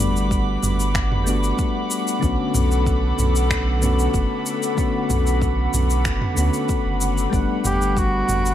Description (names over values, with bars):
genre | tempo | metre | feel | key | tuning
sunset chillout | 94 BPM | 4/4 | straight | B minor | A4 = 440 Hz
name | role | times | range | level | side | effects
soft electric-piano-like synth keys | accompaniment | 0.0-8.5 s | D3 to F#5 | -24 LUFS | moving between left 5 dB and right 5 dB | chorus, tremolo, auto-pan, tape echo
airy breathy pad | sustained chords | 0.0-8.5 s | G3 to D6 | -27 LUFS | left 2 dB | chorus
warm sub bass | bass | 0.0-8.5 s | F#1 to D2 | -21 LUFS | equal | none
deep house drum kit | drums | 0.0-8.5 s | cabasa, finger snaps, toms | -26 LUFS | equal | small room ambience
drifting glass-harmonics texture | texture | 0.0-8.5 s | B5 to D7 | -34 LUFS | right 1 dB | chorus, built-in reverb
electronic kick drum | drums | 0.3-8.1 s | none | -24 LUFS | equal | small room ambience
warm flugelhorn | melody | 7.7-8.5 s | F#4 to G4 | -22 LUFS | right 1 dB | none
room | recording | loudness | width
light reverb, digital ambience | none | -18 LUFS | side -11 dB against mid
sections
0.0-8.5 A section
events
none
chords
0.0 Gmaj7; 2.2 Bm7; 7.3 Gmaj7